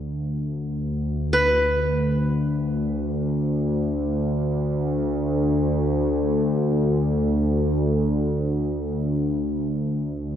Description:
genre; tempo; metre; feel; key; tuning
world meditative, free-time meditation music; free time; none; none; unclear; A4 = 441 Hz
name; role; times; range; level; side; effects
deep dark ambient pad; drone; 0.0-10.4 s; D2; -21 LUFS; equal; chorus, built-in reverb
qanun; texture; 0.0-10.4 s; B4 to C5; -22 LUFS; equal; none
room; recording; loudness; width
wet lush hall reverb, RT60 2.6 s; dreamy mix soaked in reverb, nothing above 10.9 kHz; -21 LUFS; side -9 dB against mid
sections
0.0-10.4 A section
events
none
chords
none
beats
free time

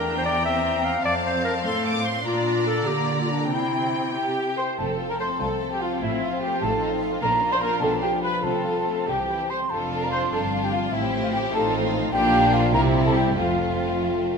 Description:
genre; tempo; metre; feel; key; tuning
quick classical-period movement for symphony orchestra; 92-101 BPM (dotted quarters); 6/8; rubato; F major; A4 = 441 Hz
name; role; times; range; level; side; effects
warm studio violin section; melody; 0.0-14.4 s; E4 to D6; -31 LUFS; left 3 dB; none
clear clarinet; second line; 0.0-4.6 s; D4 to F5; -26 LUFS; left 2 dB; none
rich studio violin section; second line; 0.0-14.4 s; G3 to G5; -30 LUFS; left 1 dB; none
rich studio viola section; accompaniment; 0.0-14.0 s; Bb3 to C5; -29 LUFS; right 2 dB; none
warm studio cello section; bass; 0.0-14.4 s; C2 to D3; -30 LUFS; right 3 dB; none
wooden flute; second line; 4.2-14.0 s; E5 to C6; -26 LUFS; equal; none
mellow French horn section; sustained chords; 4.8-14.4 s; E3 to F4; -28 LUFS; left 6 dB; none
rich studio double bass section; bass; 4.8-14.4 s; F1 to C2; -30 LUFS; right 5 dB; none
room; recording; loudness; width
wet concert hall reverb, RT60 1.9 s; minimal, uncompressed stereo recording; -21 LUFS; side -5 dB against mid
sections
0.0-4.8 A section; 4.8-14.4 B section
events
none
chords
0.0 C7/E; 1.0 F; 2.2 Bb; 3.5 C; 4.8 F; 6.0 F/A; 6.6 F7/A; 7.2 Bb; 7.8 G7/B; 8.4 F/C; 9.1 C; 9.7 F5; 10.9 F/A; 11.5 F7/A; 12.1 Bb; 12.7 C; 13.4 F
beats
0.44 | 1.04 1.64 | 2.25 2.87 | 3.51 4.15 | 4.79 5.42 | 6.03 6.63 | 7.23 7.83 | 8.45 9.08 | 9.72 10.33 | 10.94 11.54 | 12.14 12.75 | 13.38 14.02

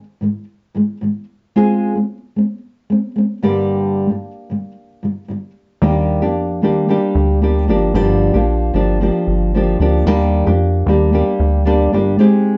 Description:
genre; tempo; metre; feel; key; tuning
acoustic pop; 113 BPM; 4/4; straight; unclear; A4 = 441 Hz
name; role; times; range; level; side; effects
nylon-string guitar; accompaniment; 0.0-12.6 s; G2 to Ab4; -17 LUFS; equal; none
plucky analog bass; bass; 5.8-12.2 s; G1 to F2; -19 LUFS; equal; none
room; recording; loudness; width
light reverb; dark, warm production, nothing above 7.6 kHz; -16 LUFS; mono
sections
0.0-5.8 A section; 5.8-12.6 B section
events
none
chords
0.0 Ab5; 1.6 Fm/Ab; 3.4 Gm; 5.8 Ebmaj7; 7.7 Gm7; 10.1 Ebmaj7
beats
0.49 1.02 | 1.56 2.09 2.62 3.16 | 3.69 4.22 4.76 5.29 | 5.82 6.36 6.89 7.42 | 7.95 8.48 9.01 9.54 | 10.07 10.61 11.13 11.66 | 12.20

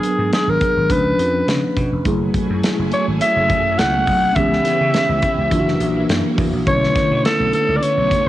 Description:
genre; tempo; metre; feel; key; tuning
polished 1980s jazz-funk pop; 104 BPM; 4/4; swing 54% on 16ths; unclear; A4 = 445 Hz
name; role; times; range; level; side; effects
growling alto saxophone; melody; 0.0-8.3 s; G#4 to F#5; -18 LUFS; equal; cassette tape, analog delay
mellow tine electric piano; accompaniment; 0.0-8.3 s; D3 to B4; -21 LUFS; equal; fast stereo tremolo, wide subtle chorus, cassette tape
modern studio drum kit; drums; 0.0-8.3 s; hi-hat, kick drum, snare drum; -23 LUFS; equal; cassette tape
congas; percussion; 0.0-8.0 s; none; -34 LUFS; right 4 dB; none
vintage slap bass; bass; 0.2-8.3 s; E#1 to C#3; -23 LUFS; equal; none
string machine, violins; sustained chords; 2.0-8.3 s; C#3 to B4; -26 LUFS; right 1 dB; ensemble chorus, cassette tape
room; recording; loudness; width
light reverb; home recording on cassette; -15 LUFS; side -14 dB against mid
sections
0.0-8.3 A section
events
none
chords
0.0 G#m7b5; 0.9 C#7b9; 2.1 F#m9; 4.4 C#m7b5; 5.5 F#7b13; 6.7 Bm11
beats
0.32 0.90 1.48 | 2.06 2.63 3.21 3.79 | 4.37 4.94 5.52 6.09 | 6.67 7.25 7.82

